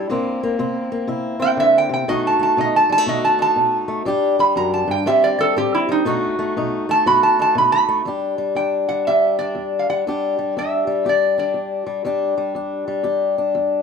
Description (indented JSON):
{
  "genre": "acoustic country blues, solo or duo",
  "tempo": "120 BPM",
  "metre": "4/4",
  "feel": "swing 64% on 8ths",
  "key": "E minor",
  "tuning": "A4 = 440 Hz",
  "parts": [
    { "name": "metal-body resonator slide guitar", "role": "melody", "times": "0.0-11.8 s", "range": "D#4 to B5", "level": "-17 LUFS", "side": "right 2 dB", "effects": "none" },
    { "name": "fingerpicked swing-style acoustic guitar", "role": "accompaniment", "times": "0.0-13.8 s", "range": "E2 to G4", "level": "-20 LUFS", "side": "left 3 dB", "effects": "none" }
  ],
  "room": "moderate large studio reverb, RT60 1.1 s",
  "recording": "band playing live in one room",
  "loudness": "-16 LUFS",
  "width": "side -6 dB against mid",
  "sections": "0.0-8.1 A section; 8.1-13.8 B section",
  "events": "resonator guitar played with a steel bar solo 0.0-8.1",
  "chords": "0.1 C7; 2.1 B7; 4.1 Em7; 5.1 Am7; 6.1 B7; 8.1 Em7",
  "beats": "| 0.09 0.59 1.08 1.58 | 2.08 2.58 3.07 3.57 | 4.07 4.56 5.06 5.56 | 6.06 6.55 7.05 7.55 | 8.05 8.55 9.05 9.55 | 10.05 10.55 11.06 11.56 | 12.06 12.56 13.06 13.55"
}